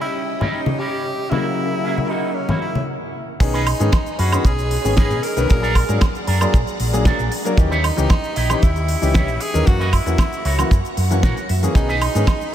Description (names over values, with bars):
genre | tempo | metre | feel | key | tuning
nu-disco, nu disco | 115 BPM | 4/4 | straight | B major | A4 = 440 Hz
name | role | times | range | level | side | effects
bright tenor saxophone | melody | 0.0-12.5 s | C#4 to A#4 | -26 LUFS | right 1 dB | analog delay
warm concert grand piano | accompaniment | 0.0-12.3 s | C#3 to B4 | -24 LUFS | left 2 dB | sidechain pumping, analog delay
string machine, full ensemble | sustained chords | 0.0-12.5 s | C#4 to D#6 | -30 LUFS | equal | phaser, ensemble chorus, sidechain pumping
electric guitar with an envelope filter | riff | 0.0-12.3 s | A#3 to F#5 | -28 LUFS | right 2 dB | lush chorus, analog delay
congas | percussion | 0.4-2.9 s | none | -25 LUFS | left 2 dB | none
hollow-body short-scale fingered electric bass | bass | 3.4-12.2 s | G#1 to B2 | -20 LUFS | equal | sidechain pumping
kick drum | drums | 3.4-12.4 s | none | -16 LUFS | equal | none
pop drum kit | drums | 3.4-12.5 s | crash cymbal, hi-hat, shaker, snare drum, woodblock | -26 LUFS | right 2 dB | none
room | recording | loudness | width
moderate church reverb, RT60 3.9 s | dreamy mix soaked in reverb | -16 LUFS | side -11 dB against mid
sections
0.0-3.4 A section; 3.4-12.5 B section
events
filter sweep on string machine 0.0-3.4; stop 2.9-3.4; drop 3.4-12.5; clean electric guitar fill 11.0-11.8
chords
0.0 D#7b9; 1.3 F#7; 3.4 B69; 5.5 A#aug7; 7.6 D#7b9; 9.7 F#7; 11.8 B69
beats
0.28 0.80 | 1.32 1.84 2.36 2.88 | 3.41 3.93 4.45 4.97 | 5.49 6.02 6.54 7.06 | 7.58 8.10 8.62 9.15 | 9.67 10.19 10.71 11.23 | 11.76 12.28